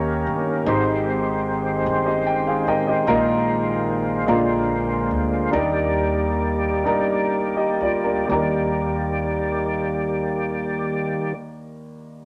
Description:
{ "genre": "slow gospel", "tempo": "40-50 BPM (dotted quarters)", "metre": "6/8", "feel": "straight", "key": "Eb major", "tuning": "A4 = 441 Hz", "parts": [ { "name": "warm upright piano", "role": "accompaniment", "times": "0.0-12.2 s", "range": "Eb2 to G5", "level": "-25 LUFS", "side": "equal", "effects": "none" }, { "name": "tonewheel organ", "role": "sustained chords", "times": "0.0-11.3 s", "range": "D3 to D5", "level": "-26 LUFS", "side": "equal", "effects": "slow rotary speaker, chorus vibrato" }, { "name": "upright bass", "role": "bass", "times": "0.0-11.3 s", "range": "G1 to Eb2", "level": "-33 LUFS", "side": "equal", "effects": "none" } ], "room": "moderate studio reverb, RT60 0.7 s", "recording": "none", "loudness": "-22 LUFS", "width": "mono", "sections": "0.0-8.3 A section; 8.3-11.3 B section", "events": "upright piano fill 1.9-3.1; slowing down 3.1-8.3", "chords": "0.0 Eb7; 0.7 Abmaj7; 3.1 Bb7sus4; 4.3 Bb7; 5.5 Ebmaj7" }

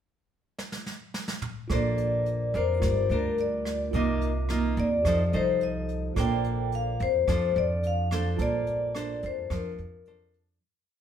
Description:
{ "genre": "bossa nova", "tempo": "108 BPM", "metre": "4/4", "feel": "straight", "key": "Bb major", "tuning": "A4 = 440 Hz", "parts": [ { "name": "jazz brush drum kit", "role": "drums", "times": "0.6-10.5 s", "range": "hi-hat, kick drum, rim click, snare drum, toms", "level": "-34 LUFS", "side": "right 2 dB", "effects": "none" }, { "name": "vibraphone with medium hard mallets", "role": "melody", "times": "1.7-10.3 s", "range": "Bb4 to G5", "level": "-28 LUFS", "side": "left 3 dB", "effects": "plate reverb" }, { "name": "nylon-string guitar", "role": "accompaniment", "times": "1.7-10.6 s", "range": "C3 to C5", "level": "-31 LUFS", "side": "right 1 dB", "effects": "none" }, { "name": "tine electric piano", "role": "accompaniment", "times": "1.7-10.6 s", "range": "F4 to D6", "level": "-38 LUFS", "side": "right 3 dB", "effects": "medium stereo tremolo" }, { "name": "upright bass", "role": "bass", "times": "1.7-10.6 s", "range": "G1 to F2", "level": "-30 LUFS", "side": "right 1 dB", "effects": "none" } ], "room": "wet studio reverb, RT60 0.9 s", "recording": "heard from further back in the room", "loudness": "-25 LUFS", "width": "side -9 dB against mid", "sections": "0.0-1.7 pickup bar; 1.7-10.6 A section", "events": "drum fill 0.6-1.7; fade-out 8.4-10.6", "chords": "0.0 N.C.; 1.7 Bbmaj9; 2.8 Gm7; 3.9 Cm11; 5.0 F7; 6.2 Bbmaj9" }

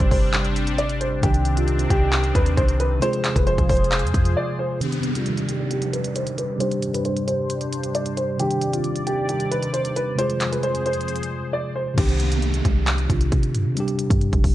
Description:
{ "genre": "hip hop, trap", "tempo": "134 BPM", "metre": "4/4", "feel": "half-time", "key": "C minor", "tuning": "A4 = 440 Hz", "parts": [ { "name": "dark baby grand piano", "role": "melody", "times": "0.0-11.9 s", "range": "F4 to D5", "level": "-26 LUFS", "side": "equal", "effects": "low-pass filter" }, { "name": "tine electric piano", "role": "accompaniment", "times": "0.0-14.5 s", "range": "C3 to Ab4", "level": "-26 LUFS", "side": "equal", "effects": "medium stereo tremolo, low-pass filter" }, { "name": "sweeping resonant pad", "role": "sustained chords", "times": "0.0-12.0 s", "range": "F2 to D5", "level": "-29 LUFS", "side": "equal", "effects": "chorus, low-pass filter" }, { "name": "clean 808-style bass", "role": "bass", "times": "0.0-4.4, 12.0-14.5 s", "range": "F1 to C3", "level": "-22 LUFS", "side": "equal", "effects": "none" }, { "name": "trap drum kit", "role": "drums", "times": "0.0-14.5 s", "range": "crash cymbal, handclaps, hi-hat, kick drum", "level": "-23 LUFS", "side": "equal", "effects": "vintage 12-bit sampler grit" }, { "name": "downlifter", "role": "sound effects", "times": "4.8-8.4, 12.0-14.5 s", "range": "none", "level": "-32 LUFS", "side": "right 2 dB", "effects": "none" } ], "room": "digital ambience", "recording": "none", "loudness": "-19 LUFS", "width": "side -14 dB against mid", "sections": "0.0-4.8 A section; 4.8-12.0 B section; 12.0-14.5 C section", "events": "break 4.4-4.8, 11.1-12.0; filter sweep 4.8-12.0", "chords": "0.0 Gsus4; 1.2 Cmadd9; 3.0 Fm; 4.8 Cmadd9; 6.6 Gsus4; 8.4 Cmadd9; 10.2 Fm; 12.0 Cmadd9; 13.8 Gsus4" }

